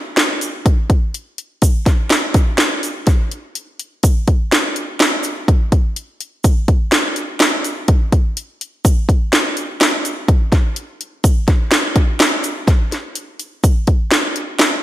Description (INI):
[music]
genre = progressive instrumental, progressive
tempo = 125 BPM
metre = 5/4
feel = straight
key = none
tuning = none
[part]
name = house drum kit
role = drums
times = 0.2-14.7 s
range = hi-hat, kick drum, snare drum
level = -13 LUFS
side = equal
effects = overdrive
[part]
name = tube shaker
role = percussion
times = 0.4-13.9 s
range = none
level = -29 LUFS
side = right 3 dB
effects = none
[sound]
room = moderate recital hall reverb, RT60 1.5 s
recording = big arena sound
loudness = -14 LUFS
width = side -14 dB against mid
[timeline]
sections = 0.0-13.6 A section; 13.6-14.8 B section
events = none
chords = none